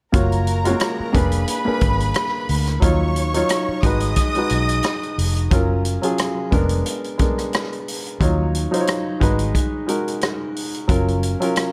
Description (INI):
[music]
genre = lush 1970s-style soul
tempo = 89 BPM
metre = 4/4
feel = swing 54% on 16ths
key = F# major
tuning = A4 = 437 Hz
[part]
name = rich studio string section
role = second line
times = 0.1-5.5 s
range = A#4 to D#6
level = -28 LUFS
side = equal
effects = none
[part]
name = warm baby grand piano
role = accompaniment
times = 0.1-11.7 s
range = F#3 to C#5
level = -24 LUFS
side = equal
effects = none
[part]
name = vintage muted fingered electric bass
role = bass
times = 0.1-11.3 s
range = E#1 to D#2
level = -23 LUFS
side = equal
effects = none
[part]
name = vintage drum kit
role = drums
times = 0.1-11.7 s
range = hi-hat, kick drum, rim click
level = -24 LUFS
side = equal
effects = none
[sound]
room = studio reverb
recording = none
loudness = -20 LUFS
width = mono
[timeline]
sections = 0.1-5.5 A section; 5.5-11.7 B section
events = none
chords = 0.1 F#maj7; 1.1 A#7b9/E#; 2.8 D#m9; 3.8 G#m7; 5.5 F#maj7; 6.5 A#7b9/E#; 8.2 D#m9; 9.2 G#m7; 10.9 F#maj7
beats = | 0.14 0.81 1.48 2.15 | 2.82 3.50 4.17 4.84 | 5.51 6.18 6.86 7.53 | 8.20 8.88 9.55 10.22 | 10.89 11.56